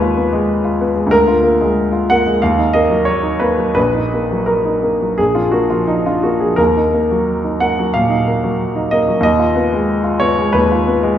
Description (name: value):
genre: classical, romantic character piece for solo piano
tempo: 82-94 BPM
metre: 4/4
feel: rubato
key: Eb minor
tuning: A4 = 440 Hz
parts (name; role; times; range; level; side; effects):
- clear grand piano; solo; 0.0-11.2 s; Bb1 to Gb5; -13 LUFS; equal; none
room: wet recital hall reverb, RT60 1.4 s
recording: heard from further back in the room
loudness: -13 LUFS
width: side -10 dB against mid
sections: 0.0-11.2 A section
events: none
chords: 0.0 Fm7b5/Eb; 1.1 Bb7/D; 2.4 Ebm; 3.8 Ebm/Bb; 5.2 Bb; 6.6 Ebm; 9.2 Fm7b5/Eb